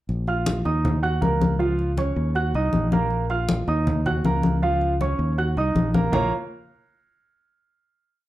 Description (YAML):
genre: latin, salsa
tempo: 159 BPM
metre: 4/4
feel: straight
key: Bb minor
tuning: A4 = 440 Hz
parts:
  - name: fingered electric bass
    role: bass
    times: 0.1-6.3 s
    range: Bb1 to Eb2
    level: -24 LUFS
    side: equal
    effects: none
  - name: congas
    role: percussion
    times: 0.1-6.2 s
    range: none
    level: -24 LUFS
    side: left 2 dB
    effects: none
  - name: warm grand piano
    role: accompaniment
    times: 0.3-6.3 s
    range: F3 to Gb6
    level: -24 LUFS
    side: right 3 dB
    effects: none
room: moderate large studio reverb, RT60 0.8 s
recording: dark, warm production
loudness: -20 LUFS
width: side -15 dB against mid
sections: 0.1-6.1 montuno (vamp); 6.1-7.6 final chord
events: none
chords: 0.1 Bb5; 0.8 Ebm; 1.6 Db; 2.4 Ebm; 3.1 Bb5; 3.9 Ebm; 4.6 Db; 5.4 Ebm; 6.1 Bb5